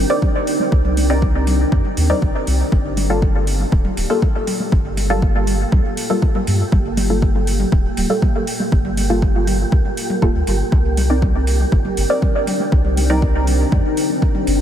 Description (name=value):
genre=dub techno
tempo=120 BPM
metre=4/4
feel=straight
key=G minor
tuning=A4 = 439 Hz
part: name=deep dark ambient pad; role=sustained chords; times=0.0-14.6 s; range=Bb3 to Bb4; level=-24 LUFS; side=equal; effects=chorus, built-in reverb, sidechain pumping
part: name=soft dub sub bass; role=bass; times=0.0-14.6 s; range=D1 to G2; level=-19 LUFS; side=equal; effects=sidechain pumping
part: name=wind-like tuned noise texture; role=texture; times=0.0-14.6 s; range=G4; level=-30 LUFS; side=right 2 dB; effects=built-in reverb, analog chorus, sidechain pumping
part: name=filtered dub chord stab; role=stabs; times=0.1-13.2 s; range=G3 to D5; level=-23 LUFS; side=equal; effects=chorus, phaser, sidechain pumping, dub echo
part: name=electronic kick drum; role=drums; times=0.2-14.3 s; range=none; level=-17 LUFS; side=equal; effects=overdrive
part: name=electronic toms and congas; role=percussion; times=0.2-14.4 s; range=none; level=-27 LUFS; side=equal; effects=sidechain pumping on toms, sidechain pumping on perc, dub echo
part: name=electronic hi-hat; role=drums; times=0.5-14.6 s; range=none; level=-30 LUFS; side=right 1 dB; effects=overdrive
room=light reverb, digital ambience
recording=none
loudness=-15 LUFS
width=side -10 dB against mid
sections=0.0-14.6 A section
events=none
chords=0.0 Cm9; 2.7 Gm9; 10.7 Cm9